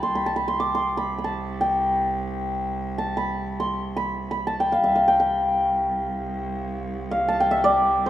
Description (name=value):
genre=Persian modal ensemble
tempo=free time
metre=none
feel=none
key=C dastgah mahur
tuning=A4 = 439 Hz
part: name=santur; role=melody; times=0.0-8.1 s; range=C5 to D6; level=-22 LUFS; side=equal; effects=none
part: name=clear cello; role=drone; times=0.0-8.1 s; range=C2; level=-31 LUFS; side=right 3 dB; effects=none
room=moderate recital hall reverb, RT60 1.4 s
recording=minimal, uncompressed stereo recording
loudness=-21 LUFS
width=side -12 dB against mid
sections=0.0-8.1 A section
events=none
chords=none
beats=free time